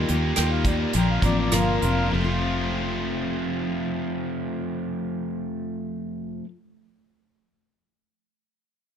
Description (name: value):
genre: folk rock and heartland rock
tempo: 97 BPM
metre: 4/4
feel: straight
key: F mixolydian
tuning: A4 = 441 Hz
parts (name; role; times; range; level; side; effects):
- picked steel-string acoustic guitar; accompaniment; 0.0-6.6 s; F2 to F4; -29 LUFS; left 5 dB; none
- biting overdriven guitar; riff; 0.0-6.5 s; Bb2 to Bb4; -28 LUFS; right 1 dB; none
- fingered electric bass; bass; 0.0-6.4 s; F1 to Eb2; -26 LUFS; right 1 dB; none
- soft brush drum kit; drums; 0.1-2.0 s; hi-hat, kick drum, rim click; -27 LUFS; right 1 dB; none
- mellow accordion; melody; 0.4-2.1 s; F4 to G5; -29 LUFS; right 2 dB; digital delay
room: small room ambience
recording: none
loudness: -23 LUFS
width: side -8 dB against mid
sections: 0.0-2.1 A section; 2.1-7.1 B section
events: slowing down 0.0-2.1; accordion solo 0.0-2.1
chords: 0.0 Ebadd9; 0.9 Bbadd9; 2.1 F